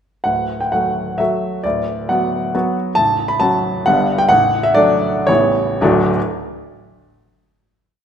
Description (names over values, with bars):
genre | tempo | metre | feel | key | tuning
classical, romantic triple-time dance for piano with dotted rhythms | 107-143 BPM | 3/4 | rubato | D major | A4 = 440 Hz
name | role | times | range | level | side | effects
clear baby grand piano | solo | 0.2-6.2 s | A0 to B5 | -14 LUFS | equal | none
room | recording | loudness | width
wet recital hall reverb, RT60 1.4 s | minimal, uncompressed stereo recording | -14 LUFS | side -8 dB against mid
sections
0.3-5.8 A section; 5.8-7.3 final chord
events
slowing down 2.3-5.8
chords
0.3 D; 1.6 Bm/D; 3.0 F#m/A; 3.9 Gmaj7; 4.3 D/A; 5.3 A9; 5.8 D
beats
| 0.26 0.72 1.20 | 1.65 2.10 2.54 | 2.96 3.41 3.85 | 4.30 4.77 5.29 | 5.82